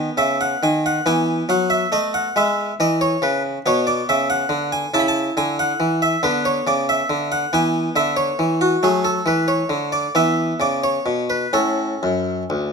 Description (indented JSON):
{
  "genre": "classical, baroque-style suite movement for harpsichord",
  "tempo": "92 BPM (dotted quarters)",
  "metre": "12/8",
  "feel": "rubato",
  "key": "E major",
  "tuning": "A4 = 437 Hz",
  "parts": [
    { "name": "harpsichord", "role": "solo", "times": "0.0-12.7 s", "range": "D2 to B5", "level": "-17 LUFS", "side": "equal", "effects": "none" }
  ],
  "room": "moderate stone room reverb, RT60 1.2 s",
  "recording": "close, detailed microphones",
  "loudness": "-17 LUFS",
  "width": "side -5 dB against mid",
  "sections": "0.0-12.7 A section",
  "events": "none",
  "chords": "0.0 B; 1.1 E; 3.7 Bm69; 4.9 Dmaj9#11/C#; 6.2 Bm; 7.5 E; 8.8 F#m; 10.1 E5; 11.5 A",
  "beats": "0.40 | 1.06 1.71 2.36 3.01 | 3.65 4.30 4.93 5.58 | 6.23 6.88 7.52 8.17 | 8.83 9.49 10.15 10.83 | 11.54 12.27"
}